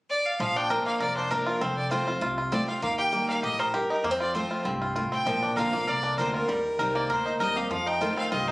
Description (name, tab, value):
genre	bluegrass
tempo	197 BPM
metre	4/4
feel	straight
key	Bb major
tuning	A4 = 441 Hz
part	clear fiddle	melody	0.1-8.5 s	Bb4 to G5	-28 LUFS	equal	none
part	picked steel-string acoustic guitar	accompaniment	0.4-8.5 s	F2 to G4	-32 LUFS	equal	none
part	bluegrass banjo	arpeggios	0.4-8.5 s	F3 to Bb4	-28 LUFS	equal	none
part	upright bass	bass	0.4-8.5 s	F1 to F2	-37 LUFS	equal	none
room	moderate studio reverb, RT60 0.5 s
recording	recorded on a phone in the room, club reverb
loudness	-24 LUFS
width	side -21 dB against mid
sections	0.4-8.5 A section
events	none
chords	0.4 Bb; 1.6 F; 2.8 Eb; 4.0 F; 5.3 Bbadd9; 6.5 Eb6; 7.7 F7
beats	0.10 | 0.40 0.70 1.01 1.31 | 1.61 1.92 2.22 2.52 | 2.83 3.13 3.44 3.74 | 4.05 4.35 4.66 4.96 | 5.26 5.57 5.88 6.18 | 6.49 6.79 7.10 7.40 | 7.71 8.01 8.32